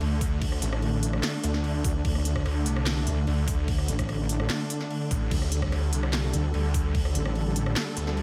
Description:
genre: heavy wobble dubstep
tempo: 147 BPM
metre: 4/4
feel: half-time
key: unclear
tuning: A4 = 440 Hz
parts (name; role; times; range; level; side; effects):
- supersaw chords; sustained chords; 0.0-8.2 s; D3 to A4; -33 LUFS; equal; sidechain pumping, low-pass filter
- snarling distorted saw bass; bass; 0.0-8.2 s; A1 to D2; -30 LUFS; equal; distortion, overdrive
- big-room dance drum kit; drums; 0.0-8.2 s; crash cymbal, handclaps, hi-hat, rim click, snare drum; -36 LUFS; equal; none
- electronic kick drum; drums; 0.2-7.0 s; none; -31 LUFS; equal; overdrive
- wobble bass; bass; 0.6-7.7 s; A1 to D2; -29 LUFS; equal; chorus, overdrive
- swell; sound effects; 4.7-5.3 s; none; -47 LUFS; equal; none
room: light reverb, digital ambience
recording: none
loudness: -27 LUFS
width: mono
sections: 0.0-8.2 A section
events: swell 4.7-5.3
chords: 0.0 D5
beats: 0.01 | 0.42 0.82 1.23 1.64 | 2.05 2.46 2.87 3.27 | 3.68 4.09 4.50 4.91 | 5.31 5.72 6.13 6.54 | 6.95 7.36 7.76 8.17

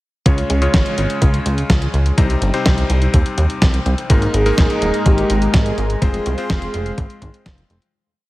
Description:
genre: italo disco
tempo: 125 BPM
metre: 4/4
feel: straight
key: unclear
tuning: A4 = 440 Hz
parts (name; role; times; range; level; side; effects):
- bright electric grand piano; stabs; 0.3-7.9 s; Ab2 to Db5; -22 LUFS; left 2 dB; low-pass filter
- chorused synth bass; bass; 0.3-7.8 s; Eb1 to Eb2; -18 LUFS; equal; tube saturation
- clean 12-bit digital drum machine; drums; 0.3-7.9 s; hi-hat, snare drum; -22 LUFS; equal; studio reverb
- electronic kick drum; drums; 0.3-7.6 s; none; -16 LUFS; equal; studio reverb
- warm analog pad; sustained chords; 4.1-7.9 s; Ab3 to C6; -24 LUFS; left 1 dB; chorus
- mellow synth brass; melody; 4.3-7.7 s; G4 to Ab4; -22 LUFS; right 1 dB; chorus
room: light reverb, digital ambience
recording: heavily compressed radio sound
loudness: -14 LUFS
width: side -18 dB against mid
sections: 0.3-7.9 verse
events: fade-out 5.4-7.9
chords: 0.3 Db; 2.2 Cm; 4.1 Absus2; 6.0 Fm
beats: | 0.26 0.74 1.22 1.70 | 2.18 2.66 3.14 3.62 | 4.10 4.58 5.06 5.54 | 6.02 6.50 6.98 7.46

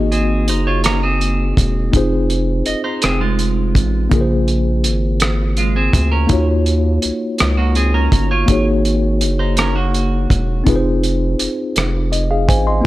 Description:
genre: slow six-eight R&B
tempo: 55 BPM (dotted quarters)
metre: 6/8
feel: straight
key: unclear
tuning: A4 = 437 Hz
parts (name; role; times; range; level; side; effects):
- mellow tine electric piano; accompaniment; 0.0-12.9 s; Db3 to C6; -19 LUFS; left 1 dB; medium stereo tremolo
- round analog bass; bass; 0.0-12.8 s; Fb1 to Eb2; -17 LUFS; equal; none
- clean electric guitar; second line; 0.1-10.6 s; Ab3 to Eb5; -21 LUFS; right 3 dB; none
- cloth-damped thuddy drum kit; drums; 0.1-12.7 s; hi-hat, kick drum, rim click; -18 LUFS; equal; none
room: studio reverb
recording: none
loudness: -14 LUFS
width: side -16 dB against mid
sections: 0.0-12.9 A section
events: none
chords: 0.0 Absus2; 1.9 Fm7; 4.1 Bbm7; 6.3 Ebm9; 8.5 Ab9sus4; 10.7 Fm7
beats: 0.85 | 1.94 3.03 | 4.12 5.21 | 6.30 7.39 | 8.48 9.57 | 10.66 11.76 | 12.85

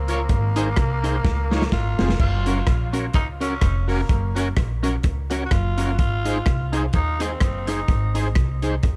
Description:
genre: ska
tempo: 126 BPM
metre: 4/4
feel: swing 56% on 8ths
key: unclear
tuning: A4 = 440 Hz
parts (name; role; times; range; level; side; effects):
- raspy tenor saxophone; melody; 0.0-8.2 s; Bb3 to Gb4; -32 LUFS; equal; dub echo
- upright bass; bass; 0.0-9.0 s; F1 to Eb2; -26 LUFS; equal; none
- electric guitar at the edge of break-up; accompaniment; 0.1-8.9 s; C4 to Db5; -30 LUFS; equal; tremolo
- overdriven tonewheel organ; stabs; 0.1-8.8 s; Eb4 to Db5; -35 LUFS; equal; chorus vibrato, slow rotary speaker
- crunchy breakbeat drum kit; drums; 0.1-9.0 s; crash cymbal, hi-hat, kick drum, rim click, snare drum; -25 LUFS; equal; none
room: small room ambience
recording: dark, warm production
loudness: -22 LUFS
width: mono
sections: 0.0-2.2 A section; 2.2-9.0 B section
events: drum fill 1.2-2.2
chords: 0.3 Ab; 1.2 Dbadd9; 1.7 Ab6; 2.2 Gb; 6.0 Ab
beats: | 0.30 0.77 1.25 1.72 | 2.20 2.67 3.15 3.62 | 4.10 4.57 5.04 5.52 | 5.99 6.47 6.94 7.41 | 7.89 8.36 8.84

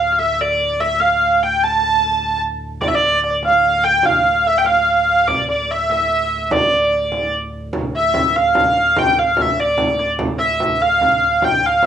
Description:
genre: medieval dance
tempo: 98 BPM (dotted quarters)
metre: 6/8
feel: straight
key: D minor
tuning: A4 = 440 Hz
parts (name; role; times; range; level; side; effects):
- rich hurdy-gurdy; melody; 0.0-11.8 s; D5 to A5; -14 LUFS; right 1 dB; cassette tape, plate reverb
- pipe organ, flutes; drone; 0.0-11.9 s; D2 to A2; -30 LUFS; equal; cassette tape
- frame drum; percussion; 2.8-11.9 s; none; -24 LUFS; right 2 dB; none
room: moderate small room reverb, RT60 0.6 s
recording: home recording on cassette, small room ambience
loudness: -14 LUFS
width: side -9 dB against mid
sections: 0.0-7.7 A section; 7.7-11.9 B section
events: none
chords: none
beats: | 0.35 0.97 | 1.58 2.20 | 2.82 3.43 | 4.05 4.67 | 5.28 5.89 | 6.51 7.12 | 7.74 8.35 | 8.97 9.58 | 10.19 10.81 | 11.42

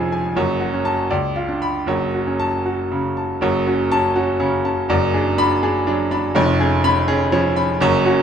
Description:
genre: classical, virtuoso piano study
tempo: 77-83 BPM (dotted quarters)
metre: 6/8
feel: rubato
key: F# minor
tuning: A4 = 440 Hz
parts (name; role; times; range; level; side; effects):
- clear baby grand piano; solo; 0.0-8.2 s; E#1 to B5; -16 LUFS; equal; none
room: moderate recital hall reverb, RT60 1.3 s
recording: close, detailed microphones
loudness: -16 LUFS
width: side -8 dB against mid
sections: 0.0-3.4 A section; 3.4-8.2 B section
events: none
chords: 0.4 F#m; 1.1 C#7b9; 1.9 F#m; 4.9 G#m7b5/F#; 6.4 C#7/E#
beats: | 0.36 1.10 | 1.87 2.65 | 3.42 4.16 | 4.89 5.63 | 6.36 7.08 | 7.81

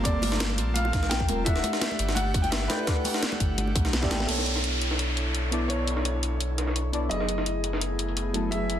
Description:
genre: liquid drum and bass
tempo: 170 BPM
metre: 4/4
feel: straight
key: B minor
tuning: A4 = 440 Hz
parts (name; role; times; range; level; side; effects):
- warm grand piano; melody; 0.0-8.8 s; A4 to G5; -33 LUFS; left 1 dB; tape echo
- deep mellow chord stab; accompaniment; 0.0-8.8 s; F#3 to G5; -33 LUFS; equal; chorus, tape echo
- airy breathy pad; sustained chords; 0.0-8.8 s; A3 to F#5; -35 LUFS; equal; chorus
- warm sub bass; bass; 0.0-8.8 s; E1 to B1; -29 LUFS; equal; tube saturation
- electronic kick drum; drums; 0.1-4.1 s; none; -27 LUFS; equal; none
- garage drum kit; drums; 0.1-8.8 s; crash cymbal, hi-hat, snare drum; -31 LUFS; equal; none
- jungle sampler-style drum kit; drums; 0.1-8.8 s; hi-hat, snare drum; -33 LUFS; left 1 dB; high-pass filter on hats, low-pass filter on hats, high-pass filter on snare, low-pass filter on snare, high-pass filter on room, low-pass filter on room
- bongos and congas; percussion; 0.2-4.2 s; none; -36 LUFS; equal; none
- downlifter; sound effects; 4.3-7.1 s; none; -32 LUFS; equal; none
room: moderate digital room reverb, RT60 1.1 s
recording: dense, heavily limited modern master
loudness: -24 LUFS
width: side -10 dB against mid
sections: 0.0-4.3 A section; 4.3-8.8 B section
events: drum fill 4.0; band accent 4.2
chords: 0.0 Gm11; 1.5 Em11; 4.3 Bm11; 7.1 F#m11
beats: | 0.05 0.40 0.76 1.11 | 1.46 1.82 2.17 2.52 | 2.88 3.23 3.58 3.93 | 4.29 4.64 4.99 5.34 | 5.70 6.05 6.40 6.76 | 7.11 7.46 7.82 8.17 | 8.52

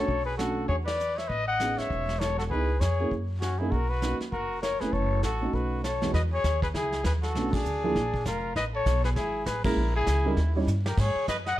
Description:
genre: jazz, small-group swing and bop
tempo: 198 BPM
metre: 4/4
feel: swing 60% on 8ths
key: B major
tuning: A4 = 439 Hz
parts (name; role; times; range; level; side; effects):
- breathy trumpet; melody; 0.0-11.6 s; F#4 to F#5; -30 LUFS; left 3 dB; none
- clear trumpet; second line; 0.0-11.6 s; C#4 to D#5; -36 LUFS; right 5 dB; none
- dark baby grand piano; accompaniment; 0.0-10.7 s; E2 to C#5; -31 LUFS; right 2 dB; none
- upright bass; bass; 0.0-11.6 s; E1 to G#2; -29 LUFS; equal; none
- vintage brush drum kit; drums; 0.1-11.6 s; brushed snare drum, crash cymbal, hi-hat, kick drum, ride cymbal, snare drum; -34 LUFS; equal; none
room: light reverb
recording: dark, warm production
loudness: -25 LUFS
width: side -14 dB against mid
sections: 0.0-6.1 A section; 6.1-11.6 B section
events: band accent 0.8, 7.5, 9.6; drum fill 10.7-11.0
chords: 0.1 Bm7; 0.7 E5; 1.3 Amaj9#11; 2.5 C#m7; 3.1 F#; 3.7 Bmaj9; 4.9 F#m7; 5.5 B7; 6.1 Emaj7; 7.4 Bm7; 8.0 A#7; 8.6 Amaj9; 9.8 A#m7b5; 10.4 D#7b9; 11.0 G#5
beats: | 0.09 0.39 0.69 0.99 | 1.30 1.60 1.90 2.20 | 2.51 2.81 3.11 3.42 | 3.72 4.02 4.33 4.63 | 4.93 5.23 5.54 5.84 | 6.14 6.44 6.75 7.05 | 7.35 7.65 7.96 8.26 | 8.56 8.86 9.16 9.47 | 9.77 10.07 10.37 10.68 | 10.98 11.28 11.58

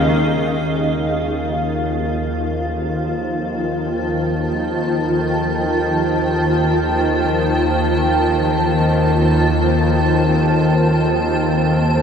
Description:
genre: dark ambient drone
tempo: free time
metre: none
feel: none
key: unclear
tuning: A4 = 440 Hz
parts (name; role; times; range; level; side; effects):
- granular cloud pad; sustained chords; 0.0-12.0 s; Db4 to A5; -19 LUFS; equal; built-in reverb, shimmer reverb
- bowed-like drone; drone; 0.0-12.0 s; Eb2 to Eb3; -18 LUFS; left 1 dB; built-in reverb
- wind-like tuned noise texture; texture; 3.5-12.0 s; A4; -33 LUFS; right 5 dB; none
room: wet huge ambient reverb, RT60 7.5 s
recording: none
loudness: -15 LUFS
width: side -7 dB against mid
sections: 0.6-12.0 A section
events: none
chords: 0.0 Db; 0.6 F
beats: free time

